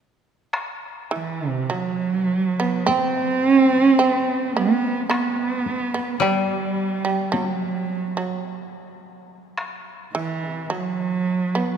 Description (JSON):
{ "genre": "japanese traditional, Japanese chamber music", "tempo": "53 BPM", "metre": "4/4", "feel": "rubato", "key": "unclear", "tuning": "A4 = 435 Hz", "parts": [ { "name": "taiko ensemble", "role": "percussion", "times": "0.5-9.8 s", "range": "none", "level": "-32 LUFS", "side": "left 3 dB", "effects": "none" }, { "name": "dark cello", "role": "melody", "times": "1.1-11.8 s", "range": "E3 to C4", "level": "-21 LUFS", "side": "right 3 dB", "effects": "none" }, { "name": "shamisen", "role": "second line", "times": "1.1-11.8 s", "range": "E3 to C4", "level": "-26 LUFS", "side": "right 3 dB", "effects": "none" }, { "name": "koto", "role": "accompaniment", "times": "6.2-9.6 s", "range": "G3", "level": "-26 LUFS", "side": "left 8 dB", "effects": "none" } ], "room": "wet cathedral reverb, RT60 4.3 s", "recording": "none", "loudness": "-20 LUFS", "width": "side -7 dB against mid", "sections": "0.5-11.8 A section", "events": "none", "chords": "none" }